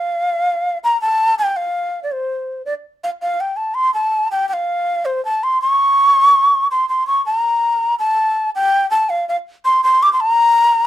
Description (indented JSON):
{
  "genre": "andean folk",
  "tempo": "82 BPM",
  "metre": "2/4",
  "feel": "straight",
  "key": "unclear",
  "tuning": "A4 = 439 Hz",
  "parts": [
    { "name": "breathy large quena", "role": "solo", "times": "0.0-10.9 s", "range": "C5 to D6", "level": "-14 LUFS", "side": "equal", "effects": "none" }
  ],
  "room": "light reverb",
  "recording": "dark, warm production",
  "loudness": "-14 LUFS",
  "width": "side -13 dB against mid",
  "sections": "0.0-1.5 A section; 1.5-7.4 B section; 7.4-10.9 C section",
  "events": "none",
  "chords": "none"
}